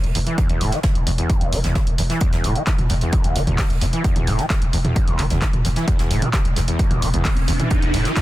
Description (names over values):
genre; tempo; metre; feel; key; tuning
driving peak-time techno; 131 BPM; 4/4; straight; unclear; A4 = 440 Hz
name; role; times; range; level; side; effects
growling 808-style bass; bass; 0.0-8.1 s; E1; -24 LUFS; equal; tube saturation, sidechain pumping, low-pass filter
punchy analog drum machine; drums; 0.0-8.2 s; handclaps, hi-hat, toms; -26 LUFS; right 1 dB; sidechain pumping on hats, sidechain pumping on toms
overdriven acid bass; riff; 0.2-8.1 s; E1 to E3; -23 LUFS; equal; distortion, ensemble chorus, sidechain pumping, digital delay
soft brush drum kit; drums; 0.2-8.2 s; hi-hat, snare drum; -35 LUFS; right 3 dB; sidechain pumping on hats, high-pass filter on hats, soft clipping on snare, high-pass filter on snare, high-pass filter on room
electronic kick drum; drums; 0.4-8.2 s; none; -20 LUFS; equal; overdrive
riser; sound effects; 6.5-8.2 s; none; -27 LUFS; right 1 dB; none
room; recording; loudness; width
digital ambience; dense, heavily limited modern master; -17 LUFS; side -16 dB against mid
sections
0.0-8.2 A section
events
riser 6.5-8.2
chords
none